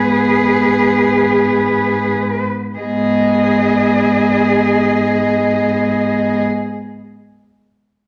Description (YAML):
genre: classical, lyrical piece for cello ensemble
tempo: free time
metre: none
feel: none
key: G# minor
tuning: A4 = 440 Hz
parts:
  - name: rich cello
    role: melody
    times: 0.0-6.4 s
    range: B4 to D#5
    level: -21 LUFS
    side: equal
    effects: none
  - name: warm cello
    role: second line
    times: 0.0-6.4 s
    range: G#4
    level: -20 LUFS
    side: equal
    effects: none
  - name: rich cello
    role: accompaniment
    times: 0.0-6.4 s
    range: B3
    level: -21 LUFS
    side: equal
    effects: none
  - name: rich cello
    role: bass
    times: 0.0-6.4 s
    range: G#2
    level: -22 LUFS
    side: equal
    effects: none
room: wet recital hall reverb, RT60 1.4 s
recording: none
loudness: -15 LUFS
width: mono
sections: 0.0-2.8 A section; 2.8-6.5 B section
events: slowing down 0.0-2.8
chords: 0.0 G#m